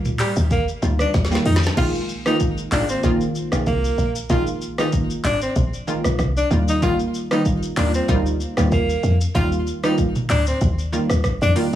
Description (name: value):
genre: afrobeats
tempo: 95 BPM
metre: 4/4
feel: swing 55% on 16ths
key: Bb mixolydian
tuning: A4 = 440 Hz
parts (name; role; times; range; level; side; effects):
- woody log drum bass; bass; 0.0-11.5 s; Ab1 to F2; -21 LUFS; equal; none
- afro-pop drum kit; drums; 0.1-11.7 s; crash cymbal, handclaps, hi-hat, kick drum, rim click, shaker, snare drum, toms; -24 LUFS; equal; overdrive
- breathy tenor saxophone; melody; 0.2-11.5 s; G3 to F4; -24 LUFS; equal; digital delay
- analog pluck; accompaniment; 0.8-11.8 s; Eb3 to F4; -23 LUFS; right 1 dB; chorus
room: light reverb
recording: small room ambience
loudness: -18 LUFS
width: side -12 dB against mid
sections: 0.0-1.8 A section; 1.8-11.8 B section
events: drum fill 1.1-1.8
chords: 0.0 Ebadd9; 1.8 Bb7sus4; 6.5 Ebadd9